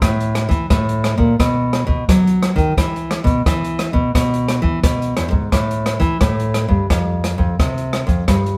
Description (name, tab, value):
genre	samba and choro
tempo	87 BPM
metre	4/4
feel	straight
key	A minor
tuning	A4 = 439 Hz
part	nylon-string guitar	bass	0.0-8.6 s	E2 to F#3	-20 LUFS	equal	none
part	open jazz drum kit	drums	0.0-8.6 s	hi-hat, kick drum, rim click	-21 LUFS	equal	none
room	moderate studio reverb, RT60 0.9 s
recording	heard from further back in the room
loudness	-17 LUFS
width	mono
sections	0.0-8.6 A section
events	none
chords	none